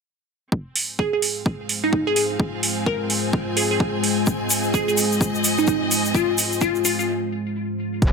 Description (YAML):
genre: bass house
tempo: 128 BPM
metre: 4/4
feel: swing 61% on 16ths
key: F minor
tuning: A4 = 441 Hz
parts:
  - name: deep dark ambient pad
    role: sustained chords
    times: 1.6-8.0 s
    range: Ab3 to C5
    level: -25 LUFS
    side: left 1 dB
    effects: chorus, built-in reverb, sidechain pumping
  - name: electronic kick drum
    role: drums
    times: 0.5-8.1 s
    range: none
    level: -22 LUFS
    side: equal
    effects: high-pass filter on kick
  - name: clear studio string section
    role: texture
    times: 0.5-7.1 s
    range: C4 to Ab5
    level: -30 LUFS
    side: left 1 dB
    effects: sidechain pumping
  - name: electronic hi-hat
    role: drums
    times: 0.8-8.1 s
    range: none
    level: -23 LUFS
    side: right 3 dB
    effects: none
  - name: glassy wavetable pluck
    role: melody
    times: 1.0-7.1 s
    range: Eb4 to Bb4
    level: -24 LUFS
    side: right 1 dB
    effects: chorus, dub echo
  - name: egg shaker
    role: percussion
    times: 4.3-7.1 s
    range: none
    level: -26 LUFS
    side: left 4 dB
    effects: none
  - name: metallic wobble bass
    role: bass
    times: 8.0-8.1 s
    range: F1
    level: -21 LUFS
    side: equal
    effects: distortion, chorus, tube saturation, sidechain pumping
room: light reverb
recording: none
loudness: -19 LUFS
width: side -5 dB against mid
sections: 0.5-8.0 A section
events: fade-in on string section 0.5-8.0; break 7.1-8.0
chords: 0.5 Fm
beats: | 0.52 0.99 1.46 1.93 | 2.40 2.87 3.33 3.80 | 4.27 4.74 5.21 5.68 | 6.15 6.62 7.08 7.55 | 8.02